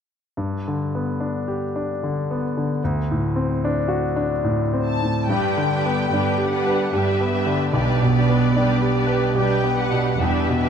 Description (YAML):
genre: classical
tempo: 73 BPM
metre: 3/4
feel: rubato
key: G major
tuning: A4 = 439 Hz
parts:
  - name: clear concert grand piano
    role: melody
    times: 0.4-10.7 s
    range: B1 to B4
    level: -20 LUFS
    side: equal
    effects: none
  - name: rich studio violin section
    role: melody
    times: 4.8-10.7 s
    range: D5 to A5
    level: -27 LUFS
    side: left 4 dB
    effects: none
  - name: rich studio violin section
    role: second line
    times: 5.3-10.7 s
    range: G4 to B4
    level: -27 LUFS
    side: left 2 dB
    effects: none
  - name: warm studio viola section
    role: accompaniment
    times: 5.3-10.7 s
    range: G3 to D4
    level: -26 LUFS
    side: right 3 dB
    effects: none
  - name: rich studio cello section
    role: bass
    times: 5.3-10.7 s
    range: E2 to B2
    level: -29 LUFS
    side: right 4 dB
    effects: none
room: moderate scoring stage reverb, RT60 1.6 s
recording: minimal, uncompressed stereo recording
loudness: -19 LUFS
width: side -7 dB against mid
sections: 0.4-5.3 A section; 5.3-10.7 B section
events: none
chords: 0.4 G; 2.8 D7; 5.3 G; 7.7 G/B; 10.2 Em7